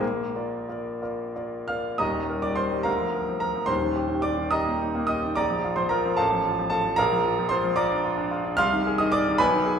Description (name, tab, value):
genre	classical, romantic character piece for solo piano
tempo	60-76 BPM (dotted quarters)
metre	6/8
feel	rubato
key	Eb major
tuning	A4 = 442 Hz
part	bright grand piano	solo	0.0-9.8 s	Eb1 to F6	-22 LUFS	equal	none
room	wet recital hall reverb, RT60 1.6 s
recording	heard from further back in the room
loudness	-23 LUFS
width	side -7 dB against mid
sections	0.0-2.0 A section; 2.0-9.8 B section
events	none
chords	0.0 Bb; 2.0 Eb; 2.9 Bb/D; 3.7 Eb; 5.4 Bb; 6.2 F/A; 7.0 Bb; 8.6 Ab/C